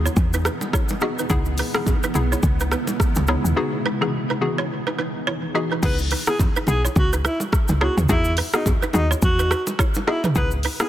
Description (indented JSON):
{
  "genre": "afrobeats",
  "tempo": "106 BPM",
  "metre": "4/4",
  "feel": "swing 58% on 16ths",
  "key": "unclear",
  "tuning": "A4 = 440 Hz",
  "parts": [
    { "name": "hollow square pluck", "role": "accompaniment", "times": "0.0-10.9 s", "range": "E3 to G#4", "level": "-27 LUFS", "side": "left 4 dB", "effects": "chorus" },
    { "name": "granular cloud pad", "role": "sustained chords", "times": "0.0-5.8 s", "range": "C#3 to G#4", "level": "-28 LUFS", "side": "right 1 dB", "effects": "built-in reverb" },
    { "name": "woody log drum bass", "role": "bass", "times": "0.0-10.7 s", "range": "B1 to E2", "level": "-21 LUFS", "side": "equal", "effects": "none" },
    { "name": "balafon", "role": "riff", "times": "0.1-10.9 s", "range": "B3 to D#5", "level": "-28 LUFS", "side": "right 4 dB", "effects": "tape echo" },
    { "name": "deep house drum kit", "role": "drums", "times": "0.1-10.9 s", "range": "crash cymbal, hi-hat, kick drum, rim click, shaker, toms", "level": "-22 LUFS", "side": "equal", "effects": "soft clipping on snare" },
    { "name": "congas and bongos", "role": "percussion", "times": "0.2-10.5 s", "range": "none", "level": "-30 LUFS", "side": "right 2 dB", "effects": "none" },
    { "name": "breathy alto saxophone", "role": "melody", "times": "5.8-10.9 s", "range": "D#4 to B4", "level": "-25 LUFS", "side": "equal", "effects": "tape echo" }
  ],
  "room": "light reverb",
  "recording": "dense, heavily limited modern master",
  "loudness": "-18 LUFS",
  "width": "side -12 dB against mid",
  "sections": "0.0-5.8 A section; 5.8-10.9 B section",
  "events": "break 3.6-5.8",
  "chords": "0.0 Emaj7; 1.3 C#m7; 3.6 Emaj7; 5.8 C#m7; 8.1 Emaj7; 10.4 C#m7",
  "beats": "0.17 0.73 | 1.30 1.86 2.43 3.00 | 3.56 4.13 4.70 5.26 | 5.83 6.39 6.96 7.53 | 8.09 8.66 9.22 9.79 | 10.36"
}